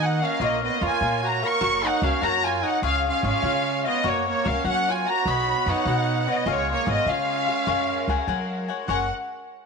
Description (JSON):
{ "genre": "mexican folk, mariachi", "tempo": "99 BPM (dotted quarters)", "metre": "6/8", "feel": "straight", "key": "F# major", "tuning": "A4 = 440 Hz", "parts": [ { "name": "warm studio violin section", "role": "melody", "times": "0.0-9.1 s", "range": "C#5 to C#6", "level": "-24 LUFS", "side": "left 2 dB", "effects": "none" }, { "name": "warm trumpet", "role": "second line", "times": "0.0-9.1 s", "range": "G#3 to A#4", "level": "-28 LUFS", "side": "right 11 dB", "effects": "none" }, { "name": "cavaquinho", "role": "accompaniment", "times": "0.0-9.1 s", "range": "D#4 to G#5", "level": "-28 LUFS", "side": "left 10 dB", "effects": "none" }, { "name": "clear chamber violin section", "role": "sustained chords", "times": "0.0-9.1 s", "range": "G#3 to D#5", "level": "-34 LUFS", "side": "equal", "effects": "none" }, { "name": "upright bass", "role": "bass", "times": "0.0-9.1 s", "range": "F#1 to F#3", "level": "-28 LUFS", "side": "right 1 dB", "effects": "transformer saturation" } ], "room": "moderate echo chamber reverb, RT60 1.8 s, small room reverb", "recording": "1960s-style stereo with parts hard left and right", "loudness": "-21 LUFS", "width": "side -4 dB against mid", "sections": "0.0-8.9 A section", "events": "none", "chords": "0.4 A#m; 1.6 F#; 2.8 C#; 4.0 F#; 5.2 Badd9; 6.5 C#; 7.7 F#add9" }